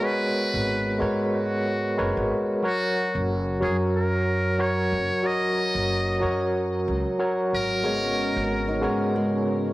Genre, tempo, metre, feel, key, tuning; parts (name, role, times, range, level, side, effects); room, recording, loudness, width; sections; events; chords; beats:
trip hop; 92 BPM; 4/4; swing 55% on 16ths; G# minor; A4 = 440 Hz
trumpet with metal mute; melody; 0.0-9.1 s; F#4 to D#5; -29 LUFS; equal; vintage 12-bit sampler grit, cassette tape, tape echo
overdriven tine electric piano; accompaniment; 0.0-9.7 s; F#3 to C#5; -24 LUFS; equal; tremolo, cassette tape
upright bass; bass; 0.5-9.7 s; F#1 to G#2; -29 LUFS; equal
string machine, cellos; sustained chords; 7.8-9.7 s; C#4 to C#5; -33 LUFS; equal; ensemble chorus, vintage 12-bit sampler grit, cassette tape
nylon-string guitar; arpeggios; 7.8-9.7 s; G#3 to G#4; -32 LUFS; left 1 dB; cassette tape, tape echo
light reverb, studio ambience; home recording on cassette; -22 LUFS; side -18 dB against mid
0.0-9.7 A section
0.0 G#m11; 2.6 D#m7/F#; 7.9 G#m11
| 0.03 0.68 1.33 1.98 | 2.63 3.29 3.94 4.59 | 5.24 5.89 6.55 7.20 | 7.85 8.50 9.16